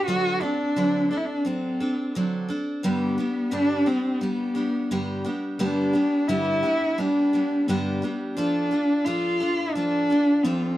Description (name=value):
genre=acoustic folk duo or small band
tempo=87 BPM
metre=4/4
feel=straight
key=unclear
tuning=A4 = 435 Hz
part: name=dark cello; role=melody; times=0.0-10.8 s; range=B3 to F#4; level=-23 LUFS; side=equal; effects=none
part: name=picked steel-string acoustic guitar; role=accompaniment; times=0.0-10.8 s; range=G2 to A4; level=-27 LUFS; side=right 1 dB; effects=none
room=moderate studio reverb, RT60 0.5 s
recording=dark, warm production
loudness=-22 LUFS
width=side -14 dB against mid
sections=0.0-10.8 A section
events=none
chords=0.1 D7; 2.8 G; 8.4 Dm/F